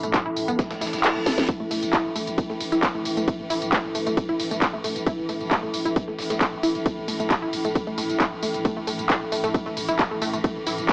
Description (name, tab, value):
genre	driving peak-time techno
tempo	134 BPM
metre	4/4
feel	straight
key	unclear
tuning	A4 = 440 Hz
part	wide unison pluck	riff	0.0-10.9 s	A3 to A4	-28 LUFS	equal	tube saturation, cassette tape, sidechain pumping, analog delay
part	growling 808-style bass	bass	0.0-10.9 s	A1	-37 LUFS	equal	overdrive, sidechain pumping, low-pass filter
part	swarming drone	drone	0.0-10.9 s	A2 to E3	-35 LUFS	equal	built-in reverb, sidechain pumping
part	techno drum kit	drums	0.0-10.9 s	handclaps, hi-hat, ride cymbal, snare drum, tambourine	-26 LUFS	equal	overdrive, sidechain pumping on hats, cassette tape, sidechain pumping on perc, sidechain pumping on cymbals
part	warbly tape-like pad	texture	0.0-10.9 s	E4 to A5	-30 LUFS	equal	chorus, built-in reverb, sidechain pumping
part	breakbeat sampler-style drum kit	drums	0.1-10.9 s	hi-hat, snare drum	-38 LUFS	equal	none
part	electronic kick drum	drums	0.1-10.9 s	none	-24 LUFS	equal	overdrive, cassette tape
part	reverse cymbal	sound effects	0.8-1.5 s	none	-32 LUFS	right 1 dB	none
room	moderate small room reverb, RT60 0.5 s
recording	home recording on cassette, small speaker sound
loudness	-22 LUFS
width	side -28 dB against mid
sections	0.0-10.9 A section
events	reverse cymbal 0.8-1.5; kick drops out 1.0-1.5; drum fill 1.3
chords	0.0 A5